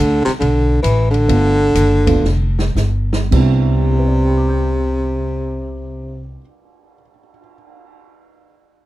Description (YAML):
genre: jazz, small-group swing and bop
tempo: 102-145 BPM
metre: 4/4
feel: swing 65% on 8ths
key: C major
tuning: A4 = 440 Hz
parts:
  - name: clear baritone saxophone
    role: melody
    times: 0.0-6.4 s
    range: C3 to E3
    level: -18 LUFS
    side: equal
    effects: none
  - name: upright bass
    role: bass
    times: 0.0-6.3 s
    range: F1 to D2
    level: -16 LUFS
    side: equal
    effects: none
  - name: open jazz drum kit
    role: drums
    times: 0.3-7.9 s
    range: crash cymbal, cymbal swell, hi-hat, kick drum, ride cymbal, snare drum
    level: -22 LUFS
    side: equal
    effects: none
  - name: dark grand piano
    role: accompaniment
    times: 1.3-7.5 s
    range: C3 to G6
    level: -21 LUFS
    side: right 5 dB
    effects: none
room: light reverb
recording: dark, warm production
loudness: -13 LUFS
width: side -16 dB against mid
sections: 0.0-3.3 A section; 3.3-8.0 B section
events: slowing down 0.0-3.3; drum fill 2.2-3.3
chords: 0.0 E5; 1.3 G7; 3.3 Cmaj7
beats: 0.41 0.84 | 1.28 1.75 2.24 2.76 | 3.33 3.91 4.50 5.08 | 5.67 6.25 6.84 7.42